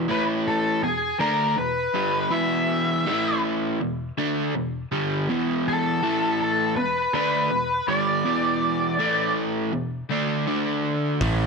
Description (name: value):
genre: blues rock power trio and southern rock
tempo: 81 BPM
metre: 4/4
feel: straight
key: unclear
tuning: A4 = 441 Hz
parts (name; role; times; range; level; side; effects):
- overdriven semi-hollow guitar; riff; 0.0-11.5 s; E2 to D4; -24 LUFS; equal; none
- octave-fuzz lead guitar; melody; 0.1-9.3 s; G#4 to E5; -24 LUFS; left 1 dB; distortion, slapback echo
- growling picked electric bass; bass; 11.2-11.5 s; A1; -22 LUFS; right 1 dB; overdrive
- big rock drum kit; drums; 11.2-11.4 s; hi-hat, kick drum; -32 LUFS; left 2 dB; none
room: moderate spring reverb, RT60 1.6 s, small room ambience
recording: 1960s-style stereo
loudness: -21 LUFS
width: side -4 dB against mid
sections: 0.0-11.5 A section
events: none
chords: 0.1 A5; 0.8 E5; 3.1 A5; 3.8 E5; 6.0 A5; 6.8 E5; 9.0 A5; 9.7 E5; 10.5 D5